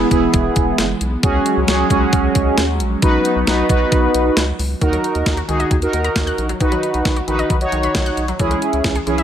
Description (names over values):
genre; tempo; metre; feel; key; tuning
synth-pop; 134 BPM; 4/4; straight; B major; A4 = 439 Hz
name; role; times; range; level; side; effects
analog synth brass; accompaniment; 0.0-9.2 s; B3 to C#5; -18 LUFS; right 1 dB; chorus
phased analog pad; sustained chords; 0.0-4.8 s; E3 to D#4; -22 LUFS; equal; phaser, chorus
round analog bass; bass; 0.0-9.2 s; E1 to D#2; -22 LUFS; equal; none
clean 12-bit digital drum machine; drums; 0.1-9.2 s; hi-hat, kick drum, snare drum; -19 LUFS; equal; none
wide unison pluck; arpeggios; 4.8-9.2 s; D#3 to F#6; -26 LUFS; left 2 dB; digital delay
room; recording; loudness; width
light reverb; none; -14 LUFS; side -9 dB against mid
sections
0.0-4.8 A section; 4.8-9.2 B section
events
none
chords
0.0 E; 1.2 C#sus4; 3.0 B; 4.8 D#m; 6.6 B; 8.4 C#m